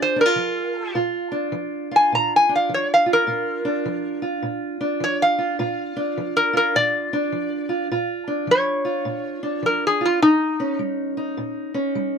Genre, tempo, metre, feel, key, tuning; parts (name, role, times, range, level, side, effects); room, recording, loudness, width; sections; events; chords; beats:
acoustic country blues, solo or duo; 104 BPM; 4/4; swing 64% on 8ths; Bb mixolydian; A4 = 439 Hz
metal-body resonator slide guitar; melody; 0.0-10.8 s; Eb4 to Bb5; -18 LUFS; left 1 dB
fingerpicked steel-string acoustic guitar; accompaniment; 0.0-12.2 s; Bb2 to Ab4; -24 LUFS; right 2 dB
light reverb; close, detailed microphones; -19 LUFS; side -6 dB against mid
1.0-12.2 A section
resonator guitar played with a steel bar solo 1.0-12.2
0.0 Bb7; 1.0 Bb; 10.2 Eb7
0.38 | 0.96 1.54 2.12 2.70 | 3.28 3.86 4.44 5.01 | 5.59 6.17 6.75 7.33 | 7.91 8.49 9.06 9.64 | 10.22 10.80 11.37 11.95